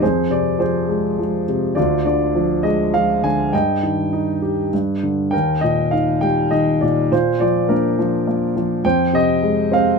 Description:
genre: classical, lyrical solo piano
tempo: 102 BPM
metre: 3/4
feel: rubato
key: unclear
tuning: A4 = 440 Hz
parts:
  - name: dark grand piano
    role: solo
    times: 0.0-10.0 s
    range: D2 to Ab5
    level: -16 LUFS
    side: equal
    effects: none
room: light reverb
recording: minimal, uncompressed stereo recording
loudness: -16 LUFS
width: side -4 dB against mid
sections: 0.0-10.0 A section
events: none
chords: 0.0 Fm; 1.8 Ddim; 3.5 Eb/G; 4.7 G5; 5.3 Eb; 7.1 Bb; 8.8 Fm

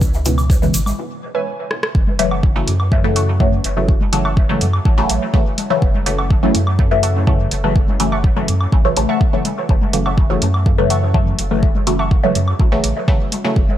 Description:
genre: dub techno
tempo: 124 BPM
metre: 4/4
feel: straight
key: F# minor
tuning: A4 = 441 Hz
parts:
  - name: filtered dub chord stab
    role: stabs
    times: 0.0-13.6 s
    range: G#2 to A3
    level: -19 LUFS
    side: left 1 dB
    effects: phaser, cassette tape, sidechain pumping, dub echo
  - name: soft dub sub bass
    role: bass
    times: 0.0-13.8 s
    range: F#1 to F#2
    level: -20 LUFS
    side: equal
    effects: sidechain pumping
  - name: electronic kick drum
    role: drums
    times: 0.0-13.7 s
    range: none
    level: -15 LUFS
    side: equal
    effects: none
  - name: egg shaker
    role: percussion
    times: 0.0-1.0 s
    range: none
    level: -28 LUFS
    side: right 2 dB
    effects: none
  - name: soft vintage rhythm box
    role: drums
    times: 0.3-13.4 s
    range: hi-hat, rim click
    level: -22 LUFS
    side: right 1 dB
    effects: overdrive
  - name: woodblock and congas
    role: percussion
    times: 0.4-13.8 s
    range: none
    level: -28 LUFS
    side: left 2 dB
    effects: sidechain pumping on perc, dub echo
  - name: warbly dusty pluck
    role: riff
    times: 1.3-12.1 s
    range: B4 to C#6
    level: -28 LUFS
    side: right 2 dB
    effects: chorus, phaser, sidechain pumping, dub echo
room: little or no reverb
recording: none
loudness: -14 LUFS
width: side -12 dB against mid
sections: 0.0-1.9 A section; 1.9-13.8 A section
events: break 1.0-1.9; drum fill 1.7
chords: 0.0 C#m7; 1.9 F#m7

